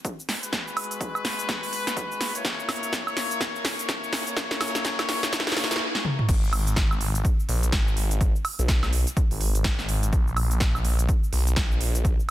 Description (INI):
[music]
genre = bass house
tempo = 125 BPM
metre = 4/4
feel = swing 60% on 16ths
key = unclear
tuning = A4 = 440 Hz
[part]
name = big-room dance drum kit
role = drums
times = 0.0-12.3 s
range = crash cymbal, hi-hat, shaker, snare drum, toms, woodblock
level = -27 LUFS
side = right 1 dB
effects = none
[part]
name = electronic kick drum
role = drums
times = 0.0-12.2 s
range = none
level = -25 LUFS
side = equal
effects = high-pass filter on kick, high-pass filter on room
[part]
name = clear horn section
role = stabs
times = 0.4-5.8 s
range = G#3 to C#5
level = -30 LUFS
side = left 3 dB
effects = sidechain pumping, low-pass filter, digital delay
[part]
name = phased detuned saw bass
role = bass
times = 6.3-12.2 s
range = G#1 to B1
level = -24 LUFS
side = equal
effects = phaser, tube saturation, sidechain pumping
[sound]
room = light reverb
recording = dense, heavily limited modern master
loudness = -22 LUFS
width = side -14 dB against mid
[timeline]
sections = 0.0-6.3 A section; 6.3-12.3 B section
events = build-up 0.0-6.3; drum fill 0.0-5.8, 5.9-6.3; drop 6.3-12.3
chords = 0.0 G#m7; 2.4 A#dim; 6.3 N.C.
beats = 0.05 | 0.53 1.01 1.49 1.97 | 2.45 2.93 3.41 3.89 | 4.37 4.85 5.33 5.81 | 6.29 6.77 7.25 7.73 | 8.21 8.69 9.17 9.65 | 10.13 10.61 11.09 11.57 | 12.05